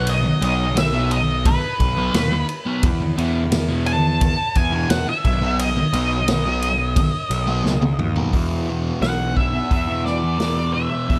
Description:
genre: psychedelic rock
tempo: 87 BPM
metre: 4/4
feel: straight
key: unclear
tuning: A4 = 442 Hz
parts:
  - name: octave-fuzz lead guitar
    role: melody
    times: 0.0-11.2 s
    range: B4 to A5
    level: -26 LUFS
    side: equal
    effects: distortion, tape echo
  - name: thick fuzz guitar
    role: riff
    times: 0.0-11.2 s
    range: E2 to B3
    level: -26 LUFS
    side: equal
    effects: distortion, phaser
  - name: fuzz picked electric bass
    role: bass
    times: 0.0-11.2 s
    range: B1 to E2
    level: -25 LUFS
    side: equal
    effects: overdrive
  - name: vintage drum kit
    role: drums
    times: 0.1-11.2 s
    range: hi-hat, kick drum, ride cymbal, snare drum, toms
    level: -26 LUFS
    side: equal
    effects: none
room: small room ambience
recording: none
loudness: -20 LUFS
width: mono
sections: 0.0-8.3 A section; 8.3-11.2 B section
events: drum fill 7.6-8.3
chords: 0.0 B; 2.8 E5; 5.2 B; 8.3 E5

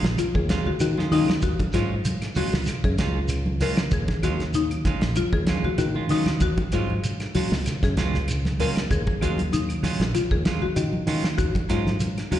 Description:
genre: afrobeat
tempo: 96 BPM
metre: 4/4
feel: swing 54% on 16ths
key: Eb minor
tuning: A4 = 440 Hz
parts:
  - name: semi-hollow electric guitar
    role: stabs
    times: 0.0-12.4 s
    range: Gb3 to F4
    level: -31 LUFS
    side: right 7 dB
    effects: slapback echo
  - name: fingered electric bass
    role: bass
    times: 0.0-12.0 s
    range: Bb1 to Eb3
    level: -25 LUFS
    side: equal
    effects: none
  - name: cloth-damped thuddy drum kit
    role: drums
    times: 0.0-12.4 s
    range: hi-hat, kick drum, snare drum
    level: -27 LUFS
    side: equal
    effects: none
  - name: vibraphone with medium mallets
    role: arpeggios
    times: 0.2-12.4 s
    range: Eb4 to Bb4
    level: -28 LUFS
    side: left 7 dB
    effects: slapback echo
  - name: claves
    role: percussion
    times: 0.2-12.3 s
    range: none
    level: -42 LUFS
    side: right 1 dB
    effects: slapback echo
  - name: shekere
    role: percussion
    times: 0.2-12.4 s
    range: none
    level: -32 LUFS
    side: right 2 dB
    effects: slapback echo
  - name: congas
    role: percussion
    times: 0.5-12.4 s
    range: none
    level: -29 LUFS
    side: right 1 dB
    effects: none
room: light reverb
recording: live gig heard through the venue's PA, recital hall reverb, nothing above 10.7 kHz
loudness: -21 LUFS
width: side -12 dB against mid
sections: 0.0-12.4 A section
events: drum fill 5.2-6.4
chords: 0.0 Ebm11

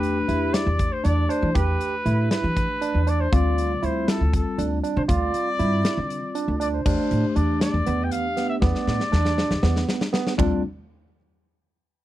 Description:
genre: progressive instrumental, band music in an uneven meter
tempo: 238 BPM (eighths)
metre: 7/8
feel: straight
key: unclear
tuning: A4 = 442 Hz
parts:
  - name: warm trumpet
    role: melody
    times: 0.0-9.8 s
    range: A4 to G5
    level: -28 LUFS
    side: left 1 dB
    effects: none
  - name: bell-like tine electric piano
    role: accompaniment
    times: 0.0-10.6 s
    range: G3 to G4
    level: -29 LUFS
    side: left 5 dB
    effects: phaser
  - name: barky tine electric piano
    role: arpeggios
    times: 0.0-10.6 s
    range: B3 to G4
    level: -27 LUFS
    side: right 7 dB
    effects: medium stereo tremolo
  - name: upright bass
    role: bass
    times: 0.0-10.6 s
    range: D2 to E3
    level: -23 LUFS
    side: equal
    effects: none
  - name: big rock drum kit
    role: drums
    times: 0.0-10.5 s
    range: crash cymbal, hi-hat, kick drum, ride cymbal, snare drum, toms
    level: -26 LUFS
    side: equal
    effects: none
room: light reverb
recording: dry, close 1970s-style studio recording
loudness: -20 LUFS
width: side -14 dB against mid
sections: 0.0-6.9 A section; 6.9-10.4 B section; 10.4-12.0 C section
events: drum fill 8.6-10.4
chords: 0.0 Em7; 3.3 Dm9; 6.9 Em7; 10.4 Dm7

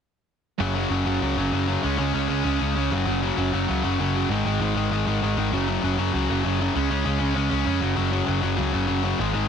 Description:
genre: punk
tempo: 195 BPM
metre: 4/4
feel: straight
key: unclear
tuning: A4 = 440 Hz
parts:
  - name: cranked stack guitar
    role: riff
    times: 0.6-9.5 s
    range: F#2 to C#4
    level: -25 LUFS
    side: left 10 dB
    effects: overdrive
  - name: raw garage guitar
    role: riff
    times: 0.6-9.5 s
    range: F#2 to C#4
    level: -27 LUFS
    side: right 12 dB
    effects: overdrive
  - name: overdriven picked electric bass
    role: bass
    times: 0.6-9.5 s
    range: F#1 to E#2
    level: -26 LUFS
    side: right 1 dB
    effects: none
room: light reverb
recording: dense, heavily limited modern master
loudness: -21 LUFS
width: side -7 dB against mid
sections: 0.6-9.5 A section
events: none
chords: 0.6 F#5; 1.8 C#5; 2.9 F#5; 4.3 G#5; 5.5 F#5; 6.8 C#5; 7.8 F#5

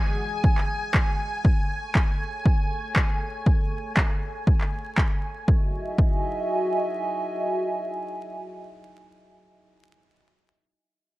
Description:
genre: deep house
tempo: 119 BPM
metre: 4/4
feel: swing 54% on 16ths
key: E major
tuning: A4 = 441 Hz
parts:
  - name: dark analog pad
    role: sustained chords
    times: 0.0-9.7 s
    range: E3 to D#6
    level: -30 LUFS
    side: right 1 dB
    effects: chorus, sidechain pumping
  - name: soft string machine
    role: texture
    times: 0.0-5.5 s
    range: G#5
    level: -33 LUFS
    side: equal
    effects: phaser, ensemble chorus
  - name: electronic kick drum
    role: drums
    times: 0.4-6.1 s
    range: none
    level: -21 LUFS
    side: equal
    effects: overdrive
  - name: electronic handclaps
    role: drums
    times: 0.6-5.1 s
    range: none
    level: -28 LUFS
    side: equal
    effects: none
room: light reverb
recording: vinyl crackle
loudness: -22 LUFS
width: side -18 dB against mid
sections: 0.0-5.5 A section; 5.5-9.5 B section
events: none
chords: 0.0 Emaj9; 1.4 Amaj7; 5.5 Emaj9

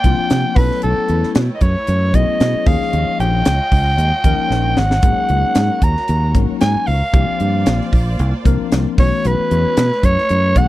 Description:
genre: electric jazz fusion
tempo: 114 BPM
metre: 4/4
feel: swing 54% on 16ths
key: unclear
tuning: A4 = 440 Hz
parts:
  - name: growling soprano saxophone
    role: melody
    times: 0.0-10.7 s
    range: A4 to Bb5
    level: -19 LUFS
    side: right 1 dB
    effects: tape echo
  - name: tine electric piano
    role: accompaniment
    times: 0.0-10.7 s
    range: E3 to Bb4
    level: -22 LUFS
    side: left 11 dB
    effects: phaser
  - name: rich studio string section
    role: sustained chords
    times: 0.0-10.7 s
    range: Ab3 to Eb5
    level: -30 LUFS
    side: right 2 dB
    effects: none
  - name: fingered electric bass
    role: bass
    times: 0.0-10.7 s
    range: Ab1 to C3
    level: -17 LUFS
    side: equal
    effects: none
  - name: crisp fusion drum kit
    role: drums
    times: 0.0-10.7 s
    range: hi-hat, kick drum, snare drum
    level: -16 LUFS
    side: equal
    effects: none
room: little or no reverb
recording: dry, close 1970s-style studio recording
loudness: -13 LUFS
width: side -16 dB against mid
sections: 0.0-10.7 A section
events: drum fill 4.5-5.0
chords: 0.0 C9sus4; 0.6 B9sus4; 2.7 Eb9sus4; 5.0 Ab9sus4; 7.1 C9sus4; 9.0 B9sus4

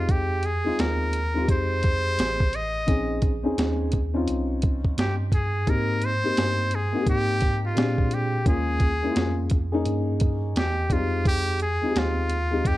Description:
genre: hip hop, jazz-hop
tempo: 86 BPM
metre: 4/4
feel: swing 63% on 16ths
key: F minor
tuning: A4 = 439 Hz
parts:
  - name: trumpet with metal mute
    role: melody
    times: 0.0-12.8 s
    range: F4 to Eb5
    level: -27 LUFS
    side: equal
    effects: none
  - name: dark grand piano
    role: accompaniment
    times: 0.0-12.8 s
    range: G3 to Ab4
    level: -28 LUFS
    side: left 2 dB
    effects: none
  - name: mellow tine electric piano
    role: bass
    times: 0.0-12.8 s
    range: A1 to Bb2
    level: -27 LUFS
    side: equal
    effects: medium stereo tremolo
  - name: boom bap sampler-style drum kit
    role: drums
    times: 0.1-12.8 s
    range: hi-hat, kick drum, snare drum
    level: -24 LUFS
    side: equal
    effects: none
room: light reverb, small room ambience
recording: dark, warm production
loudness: -22 LUFS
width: side -16 dB against mid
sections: 0.0-12.8 A section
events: none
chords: 0.0 Fm7; 2.9 Bbm11; 5.7 Abmaj9; 7.8 Bb13; 8.5 Eb7sus4; 10.9 Fm7

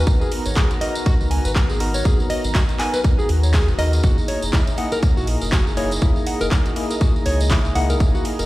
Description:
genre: afro house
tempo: 121 BPM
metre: 4/4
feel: swing 58% on 16ths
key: G# minor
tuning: A4 = 440 Hz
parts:
  - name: warm analog pad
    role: sustained chords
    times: 0.0-8.5 s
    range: B3 to A#5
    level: -30 LUFS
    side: right 1 dB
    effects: chorus, sidechain pumping
  - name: nylon-string guitar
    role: arpeggios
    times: 0.0-8.5 s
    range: E4 to G#5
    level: -26 LUFS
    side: equal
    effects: sidechain pumping, dub echo
  - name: tine electric piano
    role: stabs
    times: 0.0-8.5 s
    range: A#3 to A#4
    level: -27 LUFS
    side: left 2 dB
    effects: medium stereo tremolo, sidechain pumping, dub echo
  - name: warm sub bass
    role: bass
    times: 0.0-8.5 s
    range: D#1 to D#2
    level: -21 LUFS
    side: equal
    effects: sidechain pumping
  - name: electronic kick drum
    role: drums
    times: 0.1-8.1 s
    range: none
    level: -18 LUFS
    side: equal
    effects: overdrive
  - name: house drum kit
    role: drums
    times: 0.1-8.5 s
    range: handclaps, hi-hat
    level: -28 LUFS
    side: equal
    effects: overdrive
  - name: tambourine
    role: percussion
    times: 0.1-8.5 s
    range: none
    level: -32 LUFS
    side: right 1 dB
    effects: none
room: little or no reverb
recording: played on a big sound system in a bare room, large studio reverb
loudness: -16 LUFS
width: side -18 dB against mid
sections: 0.0-8.5 A section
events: none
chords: 0.0 G#m9; 4.0 F#13

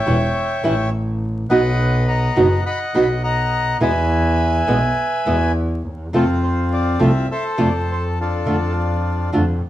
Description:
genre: tango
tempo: 104 BPM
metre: 4/4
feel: rubato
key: A harmonic minor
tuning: A4 = 440 Hz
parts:
  - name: bandoneon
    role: melody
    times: 0.0-9.3 s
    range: C4 to B5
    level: -21 LUFS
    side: left 1 dB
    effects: none
  - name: clear double bass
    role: bass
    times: 0.0-9.6 s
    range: E1 to F2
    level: -20 LUFS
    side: equal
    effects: none
  - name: nylon-string guitar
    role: accompaniment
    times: 0.1-9.4 s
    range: B2 to F#4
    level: -18 LUFS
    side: right 1 dB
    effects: none
room: moderate stone room reverb, RT60 0.9 s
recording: band playing live in one room, vinyl crackle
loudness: -16 LUFS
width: side -13 dB against mid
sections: 0.0-9.7 A section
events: none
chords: 0.0 A7; 1.5 B; 3.8 E; 6.1 F; 8.5 Dm/F

